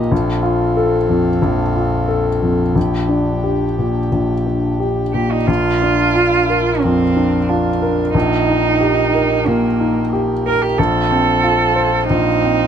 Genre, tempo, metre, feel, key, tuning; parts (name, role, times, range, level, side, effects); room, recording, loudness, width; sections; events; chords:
neoclassical piano and strings; 91 BPM; 4/4; rubato; Bb major; A4 = 441 Hz
warm grand piano; accompaniment; 0.0-12.7 s; Bb1 to C5; -15 LUFS; left 2 dB
pedal harmonium; sustained chords; 0.0-12.7 s; C4 to G5; -26 LUFS; right 1 dB
muted cello; second line; 5.1-12.7 s; Bb3 to Bb4; -17 LUFS; right 6 dB
little or no reverb; close, detailed microphones; -14 LUFS; side -8 dB against mid
0.0-5.5 A section; 5.5-12.7 B section
0.1 F/Bb; 2.8 Gm/Bb; 5.5 Bb; 8.1 Eb/Bb; 10.8 F/Bb